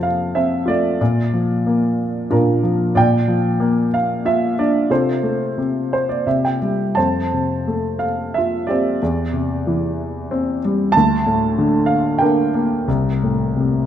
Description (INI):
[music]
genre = classical, lyrical solo piano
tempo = 84-97 BPM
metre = 3/4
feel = rubato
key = F major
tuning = A4 = 442 Hz
[part]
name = warm grand piano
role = solo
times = 0.0-13.9 s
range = C2 to A5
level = -16 LUFS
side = equal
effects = none
[sound]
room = moderate concert hall reverb, RT60 2.1 s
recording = dark, warm production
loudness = -16 LUFS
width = side -10 dB against mid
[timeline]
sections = 0.0-13.9 A section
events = grand piano fill 5.6-7.0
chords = 0.0 F; 1.0 Bb; 4.9 F/C; 6.3 C5; 7.0 Fadd9; 9.0 C/E; 10.9 Gmadd9/D; 12.9 Gmadd11/C